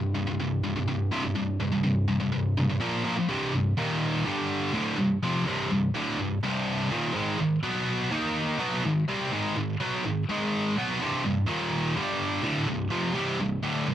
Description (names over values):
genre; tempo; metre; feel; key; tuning
metal; 125 BPM; 4/4; straight; unclear; A4 = 439 Hz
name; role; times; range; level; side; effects
scooped high-gain guitar; solo; 0.0-13.9 s; C2 to Eb4; -25 LUFS; equal; distortion
room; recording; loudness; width
little or no reverb; dark, warm production, vinyl crackle; -25 LUFS; side -11 dB against mid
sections
0.0-3.3 A section; 3.3-13.9 B section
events
none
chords
0.0 C5; 2.8 Bb5; 3.3 C5; 3.8 Eb5; 4.3 G5; 4.7 Cm; 7.1 Ab5; 7.6 B5; 8.1 Eb5; 8.6 Ab5; 11.0 C5; 11.5 Eb5; 12.0 G5; 12.4 C5